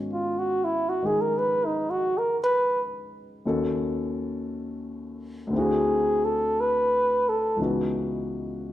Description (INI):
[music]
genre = jazz ballad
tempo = 58 BPM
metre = 4/4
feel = swing 67% on 8ths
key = G# minor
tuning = A4 = 440 Hz
[part]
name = warm grand piano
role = accompaniment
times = 0.0-8.7 s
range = C#2 to C#5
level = -29 LUFS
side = left 2 dB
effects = none
[part]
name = mellow flugelhorn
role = melody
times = 0.1-7.6 s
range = D#4 to B4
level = -23 LUFS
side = equal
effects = none
[sound]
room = moderate large studio reverb, RT60 1.3 s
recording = none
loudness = -23 LUFS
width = side -13 dB against mid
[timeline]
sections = 0.0-8.7 A section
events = flugelhorn solo 0.0-8.7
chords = 0.0 G#m7; 3.4 D#m7b5; 5.5 D9; 7.6 C#m11